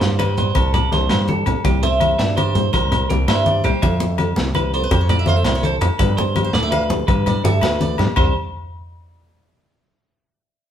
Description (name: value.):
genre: highlife guitar band.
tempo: 110 BPM (dotted quarters).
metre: 12/8.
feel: straight.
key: C major.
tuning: A4 = 445 Hz.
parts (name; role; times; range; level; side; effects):
picked swing-style acoustic guitar; melody; 0.0-8.1 s; A4 to F5; -24 LUFS; right 1 dB; none.
clean electric guitar; arpeggios; 0.0-8.3 s; G4 to E5; -24 LUFS; right 3 dB; none.
fat analog bass; bass; 0.0-8.3 s; C2 to G2; -20 LUFS; equal; none.
crunchy breakbeat drum kit; drums; 0.0-8.3 s; crash cymbal, hi-hat, kick drum, snare drum, toms; -24 LUFS; equal; none.
congas; percussion; 0.0-8.3 s; none; -23 LUFS; left 1 dB; none.
agogo bells; percussion; 0.2-8.2 s; none; -27 LUFS; left 5 dB; none.
nylon-string guitar; accompaniment; 0.4-8.3 s; E3 to A4; -29 LUFS; left 6 dB; none.
room: moderate studio reverb, RT60 0.9 s.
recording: band playing live in one room.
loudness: -15 LUFS.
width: side -9 dB against mid.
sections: 0.0-8.2 A section; 8.2-10.3 B section.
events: steel-string acoustic guitar solo 0.0-8.2; drum fill 8.0.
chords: 0.0 Cadd9; 1.6 C7; 3.8 Fmaj7; 6.0 G7; 8.2 N.C..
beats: 0.01 0.56 1.10 | 1.65 2.19 2.73 3.28 | 3.82 4.37 4.91 5.45 | 6.00 6.54 7.08 7.62 | 8.17.